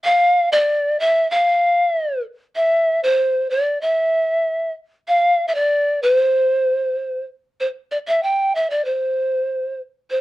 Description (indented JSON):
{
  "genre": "andean folk",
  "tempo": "96 BPM",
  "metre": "2/4",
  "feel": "straight",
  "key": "unclear",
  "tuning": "A4 = 440 Hz",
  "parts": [
    { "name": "breathy mellow pan flute", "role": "solo", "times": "0.0-10.2 s", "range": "C5 to G5", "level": "-16 LUFS", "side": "equal", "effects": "none" }
  ],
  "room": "light reverb",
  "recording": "dark, warm production",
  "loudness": "-16 LUFS",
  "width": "side -17 dB against mid",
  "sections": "0.0-7.6 A section; 7.6-10.2 B section",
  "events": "none",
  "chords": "none"
}